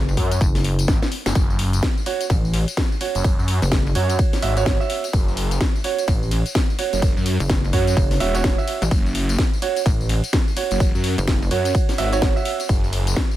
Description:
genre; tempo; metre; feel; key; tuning
bass house; 127 BPM; 4/4; swing 61% on 16ths; F# minor; A4 = 440 Hz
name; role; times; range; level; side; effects
pulsing pluck wobble bass; bass; 0.0-11.5 s; F#1 to A1; -21 LUFS; equal; chorus, tube saturation, sidechain pumping
house drum kit; drums; 0.1-13.4 s; hi-hat, ride cymbal, snare drum, tambourine; -26 LUFS; left 2 dB; none
phased detuned saw bass; bass; 0.2-13.2 s; E1 to F#2; -21 LUFS; equal; phaser, overdrive, sidechain pumping
electronic kick drum; drums; 0.2-13.3 s; none; -20 LUFS; equal; none
clear baby grand piano; stabs; 2.1-12.6 s; C#4 to E5; -25 LUFS; right 8 dB; sidechain pumping, tape echo
room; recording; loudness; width
digital ambience; none; -18 LUFS; side -14 dB against mid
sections
0.0-13.4 A section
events
drum fill 0.9-1.4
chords
0.0 F#5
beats
0.41 0.88 | 1.35 1.83 2.30 2.77 | 3.24 3.72 4.19 4.66 | 5.13 5.61 6.08 6.55 | 7.02 7.50 7.97 8.44 | 8.91 9.38 9.86 10.33 | 10.80 11.28 11.75 12.22 | 12.69 13.16

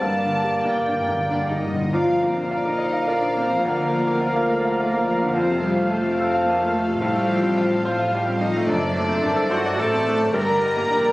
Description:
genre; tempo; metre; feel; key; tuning
classical, romantic movement for piano and orchestra; 107 BPM; 3/4; rubato; Bb major; A4 = 440 Hz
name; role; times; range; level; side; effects
bright baby grand piano; melody; 0.0-11.1 s; D2 to F5; -24 LUFS; equal; none
warm chamber violin section; melody; 0.0-11.1 s; C5 to A5; -33 LUFS; left 1 dB; none
dark clarinet; second line; 0.0-11.1 s; G4 to D5; -34 LUFS; left 1 dB; none
warm oboe; second line; 0.0-11.1 s; D5 to F5; -30 LUFS; equal; none
mellow bassoon; accompaniment; 0.0-11.1 s; F3 to Bb3; -25 LUFS; equal; none
warm symphonic cello section; bass; 0.0-11.1 s; G2 to Bb4; -28 LUFS; right 1 dB; none
timpani; percussion; 0.0-1.9 s; G2; -30 LUFS; equal; none
warm symphonic violin section; second line; 0.7-11.1 s; F4 to Bb5; -32 LUFS; left 1 dB; none
dark symphonic viola section; accompaniment; 0.7-11.1 s; Bb3 to F5; -34 LUFS; right 1 dB; none
mellow French horn section; sustained chords; 1.3-11.1 s; F3 to Bb4; -29 LUFS; left 1 dB; none
concert flute; second line; 1.9-11.1 s; A5 to Bb5; -30 LUFS; equal; none
dark symphonic double bass section; bass; 1.9-11.1 s; F#1 to F2; -33 LUFS; equal; none
room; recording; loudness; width
moderate scoring stage reverb, RT60 2.0 s; recorded on a phone in the room, studio reverb, compression; -19 LUFS; side -19 dB against mid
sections
0.0-1.9 A section; 1.9-11.1 B section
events
timpani fill 0.0-1.9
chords
0.0 Gm; 1.9 Bb; 3.6 Bb/D; 5.3 F; 7.0 F/A; 8.7 D7/F#; 10.3 Gm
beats
| 0.02 0.66 1.31 | 1.93 2.51 3.08 | 3.65 4.21 4.78 | 5.34 5.89 6.46 | 7.02 7.57 8.12 | 8.68 9.23 9.78 | 10.33 10.88

